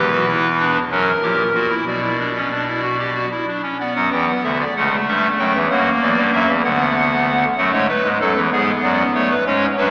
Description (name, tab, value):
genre	classical, baroque-style 3-part fugue for pipe organ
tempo	63 BPM (dotted quarters)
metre	6/8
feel	straight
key	B minor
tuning	A4 = 439 Hz
part	pipe organ, clarinet reed	solo	0.0-9.9 s	A#1 to G5	-18 LUFS	equal	none
room	wet cathedral reverb, RT60 4.9 s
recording	recorded in a church or concert hall, small speaker sound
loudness	-18 LUFS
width	mono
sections	0.0-3.8 A section; 3.8-9.9 B section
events	none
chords	0.0 E7sus2; 0.9 F#7; 1.9 Bm; 4.8 C#dim; 5.7 F#7; 6.6 Bm/D; 7.6 F#m; 8.5 G#m7b5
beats	0.91 | 1.86 2.83 | 3.80 4.76 | 5.70 6.63 | 7.58 8.52 | 9.46